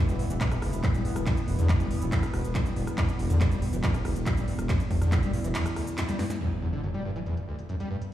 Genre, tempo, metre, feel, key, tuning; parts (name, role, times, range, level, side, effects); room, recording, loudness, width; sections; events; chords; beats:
driving peak-time techno; 140 BPM; 4/4; straight; E minor; A4 = 441 Hz
screaming distorted acid line; riff; 0.0-8.0 s; D2 to G3; -32 LUFS; equal; distortion, analog chorus, sidechain pumping, digital delay
analog drone; drone; 0.0-8.1 s; E3 to B3; -35 LUFS; right 1 dB; chorus, sidechain pumping
growling FM bass; bass; 0.1-5.5 s; D1 to E2; -28 LUFS; equal; sidechain pumping
techno drum kit; drums; 0.1-8.1 s; handclaps, hi-hat, ride cymbal, rim click, shaker, snare drum; -36 LUFS; equal; low-pass filter on snare, small room ambience, low-pass filter on hats, low-pass filter on cymbals, low-pass filter on perc
electronic kick drum; drums; 0.4-5.2 s; -26 LUFS; equal; small room ambience
impact; sound effects; 6.4-8.1 s; -35 LUFS; equal
light reverb, digital ambience; played on a big sound system in a bare room, large studio reverb, small room reverb; -25 LUFS; side -12 dB against mid
0.0-6.4 A section; 6.4-8.1 B section
drop 0.0-6.4; break 5.5-6.4; drum fill 6.0-6.4; band accent 6.3; impact 6.4-8.1; filter sweep on drum 6.4-8.1
0.0 E5
0.41 0.84 | 1.26 1.69 2.12 2.55 | 2.98 3.41 3.84 4.26 | 4.69 5.12 5.55 5.98 | 6.41 6.84 7.26 7.69 | 8.12